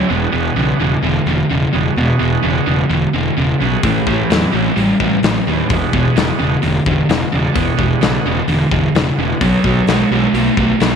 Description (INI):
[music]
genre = blues rock power trio and southern rock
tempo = 129 BPM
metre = 4/4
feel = straight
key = E mixolydian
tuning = A4 = 440 Hz
[part]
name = overdriven tonewheel organ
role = sustained chords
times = 0.0-10.3 s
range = C#4 to D5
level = -24 LUFS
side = right 9 dB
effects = slow rotary speaker
[part]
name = fuzz guitar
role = riff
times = 0.0-11.0 s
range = E2 to A3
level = -15 LUFS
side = equal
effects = distortion
[part]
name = fuzz fingered electric bass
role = bass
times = 0.1-10.9 s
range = E1 to E2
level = -19 LUFS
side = equal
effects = overdrive
[part]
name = big rock drum kit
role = drums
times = 3.8-10.9 s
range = hi-hat, kick drum, snare drum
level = -20 LUFS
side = left 4 dB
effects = none
[sound]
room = light reverb, studio reverb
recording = 1960s-style stereo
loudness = -13 LUFS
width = side -7 dB against mid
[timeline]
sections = 0.0-11.0 A section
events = none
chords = 0.1 E7; 3.8 A7; 5.7 E7; 9.4 B7